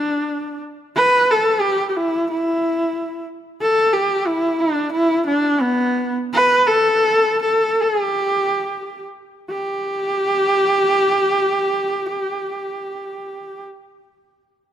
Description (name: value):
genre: mongolian traditional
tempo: 68-91 BPM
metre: 4/4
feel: straight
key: G gong mode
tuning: A4 = 440 Hz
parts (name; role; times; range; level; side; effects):
- clear horsehead fiddle; melody; 0.0-13.6 s; B3 to B4; -17 LUFS; equal; none
room: moderate concert hall reverb, RT60 2.1 s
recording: close, detailed microphones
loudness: -16 LUFS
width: side -10 dB against mid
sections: 0.0-9.5 A section; 9.5-13.0 B section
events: slowing down 3.6-9.5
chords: none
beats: 0.30 | 0.96 1.62 2.28 2.95 | 3.61 4.27 4.94 5.63 | 6.34 7.07 7.84 8.64 | 9.49 10.37 11.25 12.13